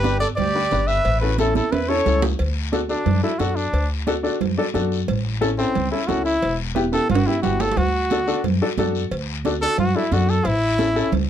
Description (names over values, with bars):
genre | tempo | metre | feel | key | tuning
latin, cumbia | 179 BPM | 4/4 | straight | D major | A4 = 440 Hz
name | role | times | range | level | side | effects
clear trumpet | melody | 0.0-11.1 s | C4 to E5 | -22 LUFS | equal | none
accordion | second line | 0.0-2.2 s | E4 to B4 | -29 LUFS | right 4 dB | none
warm upright piano | accompaniment | 0.0-11.1 s | B3 to B4 | -24 LUFS | left 3 dB | none
upright bass | bass | 0.0-11.3 s | E1 to F#2 | -23 LUFS | left 1 dB | none
congas | percussion | 0.0-11.3 s | none | -28 LUFS | right 12 dB | none
cowbell and timbales | percussion | 0.0-11.3 s | none | -28 LUFS | right 5 dB | none
guiro | percussion | 0.0-11.3 s | none | -35 LUFS | left 10 dB | none
room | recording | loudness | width
light reverb | none | -18 LUFS | side -10 dB against mid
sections
0.0-2.4 A section; 2.4-11.3 B section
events
drum fill 1.4-2.4, 6.9-7.8; trumpet solo 2.4-11.3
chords
0.0 G; 1.1 A; 2.4 D; 5.1 A; 6.4 Em; 7.8 D; 10.5 A